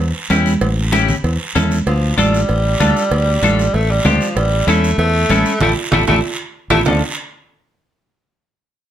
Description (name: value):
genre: latin, cumbia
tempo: 192 BPM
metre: 4/4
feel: straight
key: D harmonic minor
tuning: A4 = 440 Hz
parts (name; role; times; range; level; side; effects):
- fingered electric bass; bass; 0.0-7.0 s; A1 to E2; -17 LUFS; equal; none
- semi-hollow electric guitar; accompaniment; 0.3-7.0 s; C#4 to A4; -18 LUFS; left 4 dB; lush chorus
- congas; percussion; 0.3-6.9 s; none; -20 LUFS; right 2 dB; none
- cowbell and timbales; percussion; 0.3-6.9 s; none; -23 LUFS; right 5 dB; none
- guiro; percussion; 0.3-6.9 s; none; -28 LUFS; right 4 dB; none
- warm tenor saxophone; second line; 1.9-7.0 s; F3 to A3; -19 LUFS; equal; none
room: light reverb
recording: none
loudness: -13 LUFS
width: side -10 dB against mid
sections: 0.0-1.9 A section; 1.9-6.9 B section; 6.9-8.1 C section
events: band accent 5.6-6.9; drum fill 5.9-6.9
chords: 0.0 A7; 1.9 Dm; 4.4 A7; 6.9 Dm